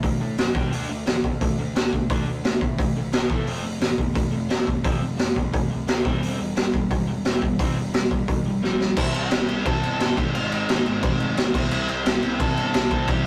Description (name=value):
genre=punk rock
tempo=175 BPM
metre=4/4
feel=straight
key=unclear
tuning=A4 = 440 Hz
part: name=crunchy overdriven guitar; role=riff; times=0.0-13.3 s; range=F2 to D4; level=-34 LUFS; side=equal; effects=none
part: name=overdriven electric guitar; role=riff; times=0.0-13.3 s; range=Ab2 to G4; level=-33 LUFS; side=equal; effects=none
part: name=fuzz picked electric bass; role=bass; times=0.0-13.3 s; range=E1 to A2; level=-34 LUFS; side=equal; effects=overdrive
part: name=raw garage drum kit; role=drums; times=0.0-13.2 s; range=crash cymbal, hi-hat, kick drum, snare drum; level=-25 LUFS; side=equal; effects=none
part: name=high-gain lead guitar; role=melody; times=9.0-13.3 s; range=Eb4 to A5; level=-32 LUFS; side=equal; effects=distortion
room=light reverb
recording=rough rehearsal-room recording, tube saturation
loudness=-23 LUFS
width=mono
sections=0.0-9.0 A section; 9.0-13.3 B section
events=drum fill 8.6-9.0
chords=0.4 Gb5; 0.6 G5; 0.7 D5; 3.1 B5; 3.3 A5; 3.5 F; 6.1 C/E; 9.0 C; 10.2 Ab; 11.5 C